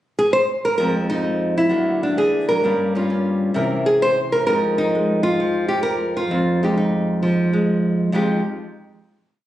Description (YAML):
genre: solo jazz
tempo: 131 BPM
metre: 4/4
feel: swing 67% on 8ths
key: F minor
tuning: A4 = 441 Hz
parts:
  - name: nylon-string guitar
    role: solo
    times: 0.2-8.4 s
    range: F2 to C5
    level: -17 LUFS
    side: equal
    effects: none
room: light reverb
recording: recorded on a phone in the room, studio reverb, compression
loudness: -17 LUFS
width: side -13 dB against mid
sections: 0.0-0.8 pickup bar; 0.8-8.1 A section; 8.1-9.5 final chord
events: none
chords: 0.0 N.C.; 0.8 Fm7; 1.7 D; 2.6 Gm7b5; 3.6 C7b9; 4.5 Fm9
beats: 0.33 | 0.79 1.25 1.71 2.17 | 2.63 3.09 3.55 4.01 | 4.47 4.93 5.39 5.84 | 6.30 6.75 7.21 7.67 | 8.12